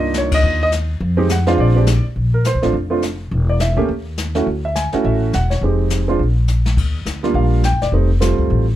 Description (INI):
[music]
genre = jazz piano trio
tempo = 208 BPM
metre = 4/4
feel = swing 61% on 8ths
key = Bb major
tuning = A4 = 442 Hz
[part]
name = warm concert grand piano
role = melody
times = 0.0-8.6 s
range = G3 to Ab5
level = -18 LUFS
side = right 2 dB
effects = none
[part]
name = upright bass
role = bass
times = 0.0-8.8 s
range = E1 to F2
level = -17 LUFS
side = left 1 dB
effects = none
[part]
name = jazz brush drum kit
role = drums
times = 0.1-8.8 s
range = brushed snare drum, crash cymbal, hi-hat, kick drum, snare drum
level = -23 LUFS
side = left 3 dB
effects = none
[sound]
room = little or no reverb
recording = none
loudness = -15 LUFS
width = side -13 dB against mid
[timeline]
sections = 0.0-2.2 A section; 2.2-8.8 B section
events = band accent 0.3; drum fill 6.5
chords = 0.0 Cm11; 1.0 Fm; 1.6 Bb9; 2.2 Bbsus2; 3.3 N.C.; 4.5 Dmaj9; 5.6 Fm7; 6.2 N.C.; 6.8 Ebmaj9; 7.9 F